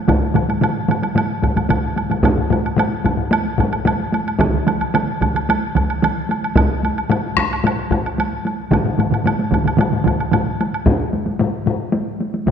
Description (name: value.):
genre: japanese traditional, taiko drum ensemble.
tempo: 111 BPM.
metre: 4/4.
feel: straight.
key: none.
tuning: none.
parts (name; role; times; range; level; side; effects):
solo taiko drums; percussion; 0.1-12.5 s; none; -21 LUFS; equal; none.
solo taiko drums; percussion; 0.1-12.5 s; none; -22 LUFS; left 6 dB; none.
solo taiko drums; percussion; 0.1-10.4 s; none; -22 LUFS; right 7 dB; none.
taiko ensemble; percussion; 0.1-12.5 s; none; -21 LUFS; equal; none.
woodblock; percussion; 0.1-10.9 s; none; -23 LUFS; right 3 dB; none.
room: wet concert hall reverb, RT60 1.9 s.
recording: none.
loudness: -16 LUFS.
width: side -7 dB against mid.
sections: 0.0-2.2 A section; 2.2-10.9 B section; 10.9-12.5 A section.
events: none.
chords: none.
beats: | 0.08 0.62 1.16 1.70 | 2.24 2.78 3.32 3.86 | 4.40 4.94 5.48 6.02 | 6.56 7.10 7.64 8.18 | 8.72 9.25 9.79 10.33 | 10.87 11.40 11.94 12.48.